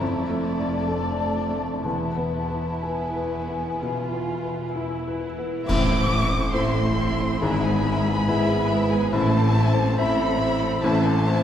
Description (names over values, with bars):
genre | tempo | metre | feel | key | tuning
classical, romantic movement for piano and orchestra | 60-72 BPM | 4/4 | rubato | A minor | A4 = 440 Hz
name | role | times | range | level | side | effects
clear grand piano | melody | 0.0-11.4 s | G#1 to E5 | -25 LUFS | left 1 dB | none
warm chamber violin section | melody | 0.0-11.4 s | B4 to D6 | -30 LUFS | left 1 dB | none
mellow hollow small flute group | second line | 0.0-5.2 s | G#5 to A5 | -32 LUFS | left 3 dB | none
rich chamber violin section | second line | 0.0-11.4 s | C4 to G#5 | -33 LUFS | equal | none
rich studio viola section | accompaniment | 0.0-11.4 s | G#3 to G#4 | -31 LUFS | right 1 dB | none
clear studio double bass section | bass | 0.0-11.4 s | E1 to A1 | -30 LUFS | right 1 dB | none
warm symphonic cello section | bass | 0.0-11.4 s | E2 to A2 | -30 LUFS | right 1 dB | none
cymbal swell, clash cymbals and concert bass drum | percussion | 1.9-7.4 s | none | -31 LUFS | equal | none
mellow French horn section | sustained chords | 7.4-11.4 s | E4 to C5 | -30 LUFS | left 1 dB | none
room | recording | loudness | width
wet concert hall reverb, RT60 2.0 s | heard from further back in the room | -21 LUFS | side -10 dB against mid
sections
0.0-5.7 A section; 5.7-11.4 B section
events
band accent 5.7-6.5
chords
0.0 Dm/F; 1.8 E; 5.7 Am; 7.4 E/G#; 9.1 Am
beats
0.01 0.88 | 1.84 2.83 3.81 4.76 | 5.68 6.54 7.42 8.29 | 9.14 9.99 10.84